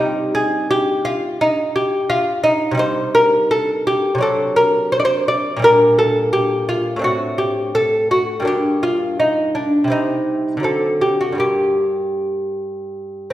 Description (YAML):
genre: classical, baroque-style dance for lute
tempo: 84 BPM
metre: 4/4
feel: rubato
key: G minor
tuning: A4 = 440 Hz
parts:
  - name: lute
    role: solo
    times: 0.0-13.3 s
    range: G2 to D5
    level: -15 LUFS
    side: equal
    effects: none
room: wet recital hall reverb, RT60 1.7 s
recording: recorded in a church or concert hall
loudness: -15 LUFS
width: side -14 dB against mid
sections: 0.0-13.3 A section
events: none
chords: 0.0 Cm; 4.2 D7/C; 5.6 Gm/Bb; 7.0 D5/A; 8.5 Gm; 9.9 Cm; 10.7 D7; 11.4 Gm